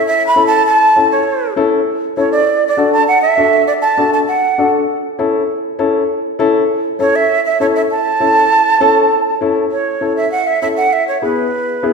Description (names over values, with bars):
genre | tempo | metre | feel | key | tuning
latin | 199 BPM | 4/4 | straight | A major | A4 = 440 Hz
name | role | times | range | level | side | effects
breathy jazz flute | melody | 0.0-4.7, 7.0-11.9 s | B4 to B5 | -13 LUFS | right 3 dB | none
dark upright piano | accompaniment | 0.4-11.9 s | B3 to A4 | -15 LUFS | left 3 dB | none
room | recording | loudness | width
wet scoring stage reverb, RT60 1.8 s | recorded in a church or concert hall | -11 LUFS | side -5 dB against mid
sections
0.1-9.7 A section; 9.7-11.9 B section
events
none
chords
0.1 A; 2.5 D; 4.9 A; 10.9 E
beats
| 0.06 0.36 0.67 0.97 | 1.27 1.57 1.87 2.17 | 2.48 2.78 3.08 3.38 | 3.68 3.98 4.29 4.59 | 4.89 5.19 5.49 5.79 | 6.10 6.40 6.70 7.00 | 7.30 7.60 7.91 8.21 | 8.51 8.81 9.11 9.41 | 9.71 10.02 10.32 10.62 | 10.92 11.22 11.53 11.83